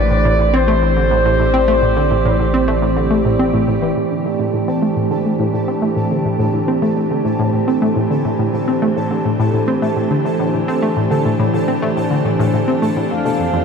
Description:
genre	ambient, sequencer-driven space music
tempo	105 BPM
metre	4/4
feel	straight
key	A minor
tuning	A4 = 440 Hz
part	expressive portamento lead	melody	0.0-3.4, 13.1-13.6 s	C5 to F5	-19 LUFS	equal	wide subtle chorus, tape echo
part	evolving wavetable pad	sustained chords	0.0-13.6 s	F2 to D5	-18 LUFS	right 2 dB	chorus, built-in reverb
part	analog pluck	riff	0.0-13.6 s	F2 to C4	-18 LUFS	left 1 dB	chorus, tape echo
part	warm sub bass	bass	0.0-3.9 s	A1	-19 LUFS	equal	none
part	pulsing gated texture	texture	4.3-13.6 s	A4 to A5	-26 LUFS	equal	chorus, built-in reverb
room	wet cathedral reverb, RT60 5.2 s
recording	in a vast, echoing space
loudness	-14 LUFS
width	side -6 dB against mid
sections	0.0-4.0 A section; 4.0-13.6 B section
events	none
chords	0.0 Am7; 13.1 F

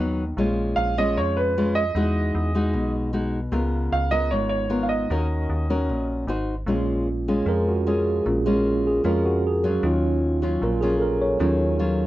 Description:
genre	bossa nova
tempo	152 BPM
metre	4/4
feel	straight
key	unclear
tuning	A4 = 440 Hz
part	nylon-string guitar	accompaniment	0.0-12.1 s	Ab2 to C5	-25 LUFS	left 1 dB	none
part	metallic FM bass	bass	0.0-12.1 s	Ab1 to F2	-26 LUFS	equal	none
part	warm grand piano	melody	0.8-6.0 s	Cb5 to F5	-25 LUFS	right 3 dB	none
part	tine electric piano	accompaniment	6.7-12.1 s	Gb3 to Db5	-23 LUFS	right 2 dB	medium stereo tremolo
room	light reverb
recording	worn, warbling old tape, cassette tape, warbly pitch drift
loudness	-20 LUFS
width	side -15 dB against mid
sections	0.0-6.7 A section; 6.7-12.1 B section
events	tine electric piano solo 6.7-12.1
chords	0.4 Bbm7; 2.0 Emaj9; 3.5 Db6; 5.1 Ebm7; 6.3 Ab7; 6.7 Bbm7; 9.8 Ebm9

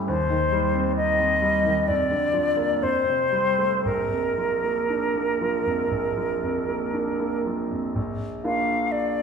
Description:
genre	classical, romantic duo for flute and grand piano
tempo	56-67 BPM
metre	4/4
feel	rubato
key	Bb major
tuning	A4 = 440 Hz
part	bright concert grand piano	accompaniment	0.0-9.2 s	Bb1 to F4	-26 LUFS	right 1 dB	none
part	silver concert flute	melody	0.1-9.2 s	Bb4 to F5	-23 LUFS	equal	none
room	wet recital hall reverb, RT60 1.3 s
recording	recorded in a church or concert hall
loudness	-21 LUFS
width	side -6 dB against mid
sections	0.0-8.0 A section; 8.0-9.2 B section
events	none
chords	0.1 Cm/Eb; 1.9 Bb/F; 2.8 Fadd9; 3.9 Bb

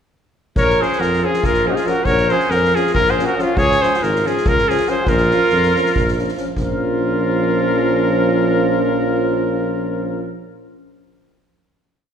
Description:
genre	balkan folk, Balkan brass band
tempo	279 BPM (eighths)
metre	7/8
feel	straight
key	Bb minor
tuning	A4 = 440 Hz
part	clear cornet	melody	0.6-10.3 s	F4 to Db5	-18 LUFS	right 1 dB	none
part	mellow trumpet	second line	0.6-10.3 s	Db4 to Bb4	-22 LUFS	equal	none
part	warm tuba	bass	0.6-10.3 s	Ab1 to F2	-22 LUFS	equal	none
part	soft-mallet drum kit	percussion	0.6-6.8 s	kick drum, snare drum	-24 LUFS	equal	none
part	mellow euphonium	accompaniment	0.8-10.3 s	Db4	-25 LUFS	left 6 dB	none
part	mellow trombone	accompaniment	0.8-10.3 s	F3	-24 LUFS	right 5 dB	none
room	wet scoring stage reverb, RT60 1.8 s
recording	recorded in a church or concert hall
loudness	-14 LUFS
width	side -8 dB against mid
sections	0.6-6.6 A section; 6.6-9.6 final chord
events	none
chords	0.6 Bbm; 3.6 Db; 5.1 Bbm

